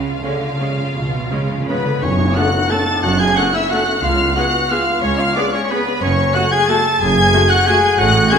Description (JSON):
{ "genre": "classical, orchestral ballroom waltz", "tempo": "158-197 BPM", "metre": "3/4", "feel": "rubato", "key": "F# minor", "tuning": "A4 = 437 Hz", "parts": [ { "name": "dark symphonic violin section", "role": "melody", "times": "0.0-8.4 s", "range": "E#5 to A6", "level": "-20 LUFS", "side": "left 2 dB", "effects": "none" }, { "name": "clear symphonic violin section", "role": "second line", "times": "0.0-8.4 s", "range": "E#4 to A5", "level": "-23 LUFS", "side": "left 2 dB", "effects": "none" }, { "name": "clear symphonic double bass section", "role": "bass", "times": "0.0-8.2 s", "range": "F#1 to C#2", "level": "-23 LUFS", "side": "right 2 dB", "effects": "none" }, { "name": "rich symphonic cello section", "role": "bass", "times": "0.0-8.2 s", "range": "C#2 to D3", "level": "-22 LUFS", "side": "right 3 dB", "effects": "none" }, { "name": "timpani", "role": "percussion", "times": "0.0-4.5 s", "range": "F#2 to C#3", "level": "-24 LUFS", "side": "equal", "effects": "none" }, { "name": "rich symphonic viola section", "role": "accompaniment", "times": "0.2-8.4 s", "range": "G#3 to A4", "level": "-26 LUFS", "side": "right 1 dB", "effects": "none" }, { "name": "bright clarinet", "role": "second line", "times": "1.7-8.4 s", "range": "B3 to A4", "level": "-22 LUFS", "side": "left 1 dB", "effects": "none" }, { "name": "concert flute", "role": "second line", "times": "1.7-8.4 s", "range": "B4 to A5", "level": "-24 LUFS", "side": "left 2 dB", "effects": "none" }, { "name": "warm oboe", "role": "second line", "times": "1.7-8.4 s", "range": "B4 to A5", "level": "-22 LUFS", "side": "equal", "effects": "none" }, { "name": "tam-tam", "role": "percussion", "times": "2.0-3.3 s", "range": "none", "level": "-27 LUFS", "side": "left 1 dB", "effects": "none" }, { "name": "warm French horn section", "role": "sustained chords", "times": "2.4-8.4 s", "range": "A3 to A4", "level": "-25 LUFS", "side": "left 3 dB", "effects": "none" } ], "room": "wet recital hall reverb, RT60 1.6 s", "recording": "recorded in a church or concert hall", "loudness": "-14 LUFS", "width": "side -6 dB against mid", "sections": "0.0-2.0 A section; 2.0-8.4 B section", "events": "timpani fill 0.0-2.0; band accent 2.0-2.4", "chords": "0.0 C#; 2.0 F#m; 4.0 C#7; 6.0 F#m", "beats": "0.23 0.61 | 0.96 1.32 1.69 | 2.03 2.37 2.71 | 3.04 3.37 3.71 | 4.03 4.36 4.70 | 5.03 5.36 5.70 | 6.02 6.34 6.68 | 7.00 7.33 7.66 | 7.98 8.30" }